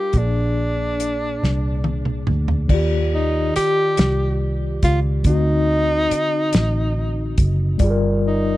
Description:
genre	slow six-eight R&B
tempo	47 BPM (dotted quarters)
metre	6/8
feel	straight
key	Eb major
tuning	A4 = 440 Hz
part	warm tenor saxophone	melody	0.0-8.6 s	D4 to G4	-22 LUFS	equal	tape echo
part	mellow tine electric piano	accompaniment	0.0-8.6 s	Bb2 to D5	-24 LUFS	left 2 dB	medium stereo tremolo
part	vintage muted fingered electric bass	bass	0.0-8.6 s	F#1 to Eb2	-21 LUFS	equal	none
part	warm soul drum kit	drums	0.1-8.0 s	crash cymbal, hi-hat, kick drum, snare drum, toms	-21 LUFS	equal	none
room	small room ambience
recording	none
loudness	-17 LUFS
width	side -16 dB against mid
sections	0.0-2.7 A section; 2.7-8.6 B section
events	drum fill 1.4-2.7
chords	0.1 Bb7; 2.7 Ebmaj9; 5.2 D7b9; 7.8 Gm7

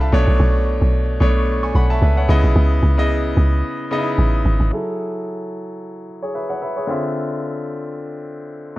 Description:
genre	amapiano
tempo	111 BPM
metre	4/4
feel	swing 55% on 16ths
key	F# minor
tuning	A4 = 440 Hz
part	bright grand piano	accompaniment	0.0-8.8 s	B2 to C#6	-22 LUFS	left 1 dB	low-pass filter
part	deep log drum bass	bass	0.0-4.7 s	G#1 to C#2	-15 LUFS	equal	none
room	small room ambience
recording	worn, warbling old tape, cassette tape, warbly pitch drift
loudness	-16 LUFS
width	side -18 dB against mid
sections	0.0-4.7 A section; 4.7-8.8 B section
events	drop 0.0-4.7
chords	0.1 Bm9; 2.3 C#m9; 4.7 F#m9; 6.9 Dm9

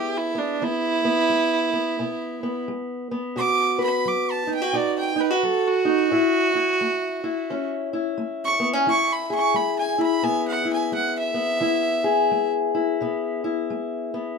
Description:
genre	acoustic country blues, solo or duo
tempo	87 BPM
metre	4/4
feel	swing 62% on 8ths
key	E mixolydian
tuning	A4 = 440 Hz
part	rich fiddle	melody	0.0-12.5 s	D4 to D6	-23 LUFS	right 3 dB	none
part	fingerpicked steel-string acoustic guitar	accompaniment	0.0-14.4 s	A2 to B4	-23 LUFS	left 2 dB	none
room	light reverb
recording	minimal, uncompressed stereo recording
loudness	-20 LUFS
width	side -5 dB against mid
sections	0.0-14.4 A section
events	fiddle solo 0.0-14.4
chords	0.0 E; 3.4 B; 6.1 A; 8.9 E

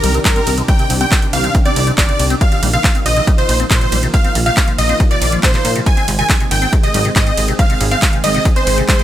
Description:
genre	uplifting trance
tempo	139 BPM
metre	4/4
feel	straight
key	unclear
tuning	A4 = 437 Hz
part	big supersaw lead	melody	0.0-9.0 s	Bb4 to Ab5	-19 LUFS	right 1 dB	sidechain pumping, digital delay
part	wide unison pluck	second line	0.0-9.0 s	Bb4 to Ab5	-24 LUFS	right 1 dB	cassette tape, sidechain pumping, digital delay
part	liquid acid bass	arpeggios	0.0-9.0 s	C2 to C4	-23 LUFS	left 4 dB	lush chorus, sidechain pumping, digital delay
part	plucky analog bass	bass	0.0-9.0 s	G1 to Bb2	-18 LUFS	equal	sidechain pumping
part	techno drum kit	drums	0.0-9.0 s	handclaps, hi-hat, ride cymbal	-20 LUFS	right 1 dB	none
part	electronic kick drum	drums	0.3-9.0 s	none	-14 LUFS	equal	none
room	little or no reverb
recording	none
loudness	-11 LUFS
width	side -12 dB against mid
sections	0.0-9.0 A section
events	none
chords	0.0 Cmadd9; 2.4 Bbsus4; 5.9 Ab

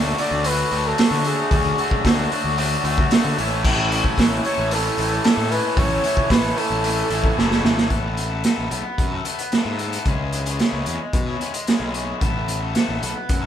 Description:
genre	indie rock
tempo	112 BPM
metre	4/4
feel	straight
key	A major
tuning	A4 = 440 Hz
part	overdriven electric guitar	riff	0.0-13.5 s	E3 to A4	-26 LUFS	left 4 dB	none
part	raw garage guitar	riff	0.0-7.9 s	A2 to F#4	-26 LUFS	right 4 dB	overdrive
part	fuzz picked electric bass	bass	0.0-13.5 s	F#1 to D3	-26 LUFS	left 1 dB	overdrive
part	raw garage drum kit	drums	0.1-13.4 s	crash cymbal, hi-hat, kick drum, snare drum	-21 LUFS	right 1 dB	none
part	expressive portamento lead	melody	0.2-7.6 s	G#4 to D5	-24 LUFS	equal	chorus
room	moderate studio reverb, RT60 0.7 s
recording	band playing live in one room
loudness	-18 LUFS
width	side -10 dB against mid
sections	0.0-7.9 A section; 7.9-13.5 B section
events	drum fill 7.4-7.9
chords	0.0 D; 3.4 A; 7.9 Asus2; 10.1 C#m; 12.2 Asus2

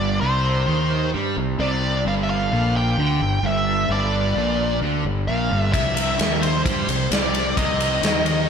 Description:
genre	blues rock power trio and southern rock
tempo	131 BPM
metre	4/4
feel	straight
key	unclear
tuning	A4 = 440 Hz
part	bluesy overdriven lead guitar	melody	0.0-8.4 s	C5 to G5	-24 LUFS	equal	wah, distortion, slapback echo
part	overdriven tonewheel organ	sustained chords	0.0-8.3 s	C4 to E5	-36 LUFS	right 2 dB	none
part	sludgy distorted guitar	riff	0.0-8.5 s	G2 to G3	-23 LUFS	right 1 dB	overdrive
part	fuzz fingered electric bass	bass	0.0-8.4 s	G1 to G2	-25 LUFS	equal	overdrive
part	big rock drum kit	drums	5.7-8.4 s	kick drum, ride cymbal, snare drum	-22 LUFS	equal	none
room	moderate lush hall reverb, RT60 2.0 s, small room reverb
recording	big arena sound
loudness	-18 LUFS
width	side -7 dB against mid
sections	0.0-8.5 A section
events	none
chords	0.2 C7; 2.1 G7; 5.7 C7; 7.6 Cm7

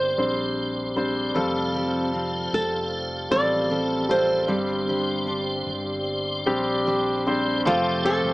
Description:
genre	pop ballad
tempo	77 BPM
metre	4/4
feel	straight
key	F major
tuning	A4 = 440 Hz
part	flamenco guitar	melody	0.0-8.3 s	F4 to D5	-25 LUFS	right 1 dB	none
part	warm concert grand piano	accompaniment	0.0-8.3 s	G2 to C5	-25 LUFS	left 1 dB	none
part	tonewheel organ	sustained chords	0.0-8.3 s	G4 to C6	-30 LUFS	equal	chorus vibrato, slow rotary speaker
part	mellow fretless electric bass	bass	0.0-8.3 s	F1 to Bb1	-36 LUFS	equal	none
part	fingerpicked steel-string acoustic guitar	arpeggios	1.4-8.3 s	F3 to C5	-31 LUFS	right 2 dB	tape echo
room	light reverb, studio reverb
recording	small speaker sound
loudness	-22 LUFS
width	side -20 dB against mid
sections	0.0-7.7 A section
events	none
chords	0.0 Gsus4; 1.4 Fadd9; 4.5 Gsus4; 7.7 Fadd9

